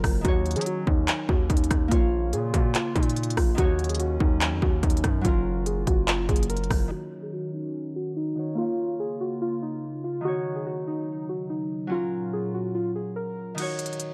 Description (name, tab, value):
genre	hip hop, trap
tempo	144 BPM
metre	4/4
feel	half-time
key	Eb minor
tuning	A4 = 439 Hz
part	muted felt-like synth keys	melody	0.0-13.6 s	Eb4 to Bb4	-32 LUFS	equal	chorus, low-pass filter
part	Celtic harp	accompaniment	0.0-14.1 s	Eb3 to F5	-36 LUFS	equal	low-pass filter
part	hollow soft pad	sustained chords	0.0-13.6 s	Bb2 to Gb4	-39 LUFS	equal	chorus, low-pass filter
part	distorted 808-style bass	bass	0.0-6.9 s	Gb1 to Gb3	-30 LUFS	equal	distortion
part	trap drum kit	drums	0.0-6.8, 13.6-14.1 s	crash cymbal, handclaps, hi-hat, kick drum, rim click	-27 LUFS	equal	none
room	light reverb, digital ambience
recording	none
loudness	-26 LUFS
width	mono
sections	0.0-6.9 A section; 6.9-13.6 B section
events	filter sweep 6.9-13.6; kick muted 13.6-14.1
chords	0.2 Ebm7; 1.9 Bbm; 3.6 Ebm7; 5.2 Gbmaj7; 6.9 Ebm7; 8.6 Bbm; 10.2 Ebm7; 11.9 Gbmaj7; 13.6 Ebm7